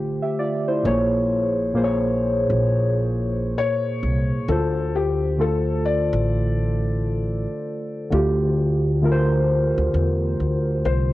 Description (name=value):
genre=lo-fi hip hop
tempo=66 BPM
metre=4/4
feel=swing 63% on 16ths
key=D minor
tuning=A4 = 439 Hz
part: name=muted felt-like synth keys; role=accompaniment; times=0.0-11.1 s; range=Bb2 to E5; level=-21 LUFS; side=equal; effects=chorus, cassette tape
part: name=upright bass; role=bass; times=0.0-11.1 s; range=A1 to E2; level=-24 LUFS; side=equal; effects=none
part: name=felt-muted upright piano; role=melody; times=3.6-11.1 s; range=G4 to D5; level=-26 LUFS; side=left 6 dB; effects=cassette tape
room=moderate spring reverb, RT60 1.5 s, small room ambience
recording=home recording on cassette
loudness=-19 LUFS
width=side -16 dB against mid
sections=0.0-11.1 A section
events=none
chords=0.0 Dm7; 0.8 Bbm7; 4.5 Dm7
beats=| 0.84 1.75 2.66 3.57 | 4.48 5.38 6.29 7.20 | 8.11 9.02 9.93 10.84